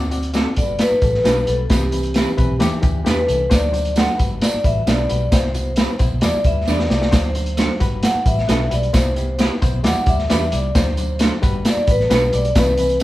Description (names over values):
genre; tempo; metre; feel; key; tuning
uptempo 1960s-style soul; 133 BPM; 4/4; straight; unclear; A4 = 440 Hz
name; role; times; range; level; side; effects
barky reed electric piano; accompaniment; 0.0-13.0 s; E3 to D5; -26 LUFS; left 3 dB; overdrive, fast tremolo
vintage muted fingered electric bass; bass; 0.0-13.0 s; G1 to E2; -22 LUFS; equal; none
crunchy breakbeat drum kit; drums; 0.1-13.0 s; hi-hat, kick drum, snare drum; -18 LUFS; equal; none
tambourine; percussion; 0.1-13.0 s; none; -35 LUFS; right 3 dB; none
electric guitar through a small old amp; stabs; 0.3-12.2 s; G3 to C5; -25 LUFS; right 4 dB; none
vibraphone with medium mallets; melody; 0.6-13.0 s; G4 to F#5; -21 LUFS; left 1 dB; none
room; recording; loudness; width
light reverb; band playing live in one room; -15 LUFS; side -16 dB against mid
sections
0.0-13.0 A section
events
vibraphone solo 0.0-13.0; drum fill 6.7-7.1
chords
0.0 D7; 0.6 Gmaj7; 1.7 Cmaj7; 2.6 Em7; 3.5 D7; 4.2 Gmaj7; 5.3 Cmaj7; 6.2 Em7; 7.1 D7; 7.8 Gmaj7; 8.9 Cmaj7; 9.8 Em7; 10.8 D7; 11.4 Gmaj7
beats
0.35 0.80 1.25 | 1.71 2.16 2.61 3.06 | 3.52 3.97 4.42 4.87 | 5.33 5.78 6.23 6.68 | 7.13 7.59 8.04 8.49 | 8.94 9.39 9.85 10.30 | 10.75 11.20 11.65 12.11 | 12.56 13.01